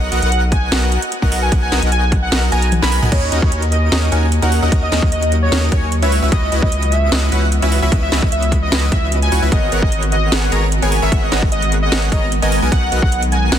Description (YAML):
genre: future bass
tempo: 150 BPM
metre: 4/4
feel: half-time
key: unclear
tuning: A4 = 440 Hz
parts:
  - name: warm velvety synth lead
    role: melody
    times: 0.0-13.5 s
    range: C#5 to B5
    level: -22 LUFS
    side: equal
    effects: chorus, sidechain pumping, ping-pong delay
  - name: Celtic harp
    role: arpeggios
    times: 0.0-5.4 s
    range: F#4 to F#5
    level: -33 LUFS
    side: right 1 dB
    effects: none
  - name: airy dreamy lead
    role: arpeggios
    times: 0.0-13.6 s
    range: D#5 to A#5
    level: -28 LUFS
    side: equal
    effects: chorus, sidechain pumping, ping-pong delay
  - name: supersaw stab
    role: riff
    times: 0.0-13.6 s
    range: B3 to A#5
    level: -21 LUFS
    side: equal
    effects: sidechain pumping, ping-pong delay
  - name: saturated sub bass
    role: bass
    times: 0.0-13.6 s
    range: G#1 to D#2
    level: -17 LUFS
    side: equal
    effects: sidechain pumping
  - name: trap drum kit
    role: drums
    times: 0.1-13.6 s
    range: crash cymbal, hi-hat, snare drum, toms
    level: -22 LUFS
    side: right 1 dB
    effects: overdrive
  - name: electronic kick drum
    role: drums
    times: 0.5-13.1 s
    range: none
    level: -16 LUFS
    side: equal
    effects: overdrive
  - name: ethereal airy pad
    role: sustained chords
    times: 4.0-13.6 s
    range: C#3 to D#5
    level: -27 LUFS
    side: equal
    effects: ensemble chorus, built-in reverb, sidechain pumping
room: digital ambience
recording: dense, heavily limited modern master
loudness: -13 LUFS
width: side -10 dB against mid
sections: 0.0-3.1 A section; 3.1-13.6 A section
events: drop 0.0-3.1, 3.1-13.6; drum fill 2.7-3.1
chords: 0.0 Bmaj7; 3.1 D#m7; 6.1 C#m11; 9.5 G#m11; 12.5 Bmaj7